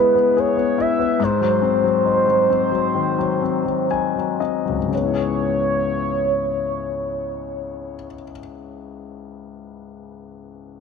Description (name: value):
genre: pop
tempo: 58-74 BPM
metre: 4/4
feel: straight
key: C# minor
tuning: A4 = 440 Hz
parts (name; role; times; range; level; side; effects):
- mellow horn-like synth lead; melody; 0.0-8.2 s; B4 to E5; -20 LUFS; right 2 dB; chorus, phaser
- warm concert grand piano; accompaniment; 0.0-10.8 s; C#2 to G#5; -22 LUFS; left 9 dB; none
room: moderate echo chamber reverb, RT60 2.7 s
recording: 1960s-style stereo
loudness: -18 LUFS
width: side -5 dB against mid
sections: 0.0-4.9 A section; 4.9-9.0 B section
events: slowing down 0.0-4.9; grand piano fill 3.4-4.9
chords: 0.0 C#m7; 1.2 G#7; 4.9 C#m7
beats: 0.37 | 1.20 2.06 2.96 3.91 | 4.92 5.95 6.96 7.98